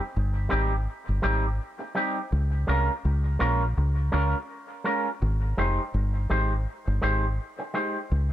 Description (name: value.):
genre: roots reggae.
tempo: 83 BPM.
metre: 4/4.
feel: swing 57% on 16ths.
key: Ab major.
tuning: A4 = 444 Hz.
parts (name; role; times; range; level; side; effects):
deep dub fingered electric bass; bass; 0.2-8.3 s; F1 to Db2; -24 LUFS; equal; none.
electric guitar with an envelope filter; accompaniment; 0.5-8.0 s; G3 to C5; -28 LUFS; right 1 dB; dub echo.
room: light reverb, digital ambience.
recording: none.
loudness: -24 LUFS.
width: side -12 dB against mid.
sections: 0.0-8.3 A section.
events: none.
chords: 0.0 Abmaj7; 2.3 Db6; 5.2 Abmaj7.